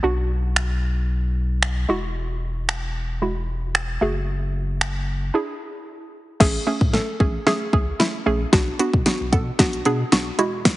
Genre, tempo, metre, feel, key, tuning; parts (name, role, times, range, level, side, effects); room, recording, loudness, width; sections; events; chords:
dance-pop; 113 BPM; 4/4; straight; A major; A4 = 440 Hz
hollow square pluck; accompaniment; 0.0-10.8 s; G#3 to A4; -23 LUFS; right 1 dB; chorus, sidechain pumping
warm sub bass; bass; 0.0-10.7 s; E1 to B2; -25 LUFS; equal; sidechain pumping
pop drum kit; drums; 0.6-10.8 s; crash cymbal, finger snaps, hi-hat, kick drum, snare drum; -21 LUFS; equal
light reverb; heavily compressed radio sound, high-pass filter, nothing above 10.5 kHz; -19 LUFS; side -17 dB against mid
0.0-6.4 A section; 6.4-10.8 B section
build-up 6.4-10.8; drum fill 6.4-10.8
0.0 Bm; 1.9 Eadd9; 4.0 F#madd9; 5.3 E7; 6.4 Amaj7; 8.5 Bm